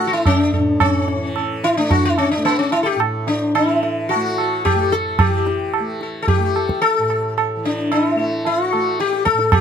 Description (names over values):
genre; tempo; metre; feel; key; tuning
indian classical, Hindustani; 110 BPM; 4/4; straight; A raga khamaj; A4 = 440 Hz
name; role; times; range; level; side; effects
sitar; melody; 0.0-9.6 s; B3 to A4; -18 LUFS; left 3 dB; none
tanpura; drone; 0.0-9.6 s; A2 to A3; -27 LUFS; right 1 dB; none
tabla; percussion; 0.3-9.6 s; none; -20 LUFS; right 4 dB; none
room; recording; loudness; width
light reverb; close, detailed microphones; -16 LUFS; side -8 dB against mid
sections
0.0-5.2 A section; 5.2-9.6 B section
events
speeding up 0.0-9.6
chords
none